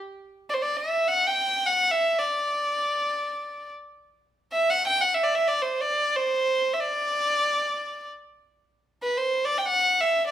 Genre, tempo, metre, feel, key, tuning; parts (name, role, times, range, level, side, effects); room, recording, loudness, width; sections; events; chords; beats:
Turkish makam ensemble; free time; A4 = 440 Hz
rich violin; solo; 0.5-10.3 s; B4 to G5; -22 LUFS; equal
wet large studio reverb, RT60 1.1 s; band playing live in one room; -22 LUFS; side -11 dB against mid
0.0-10.3 A section
free time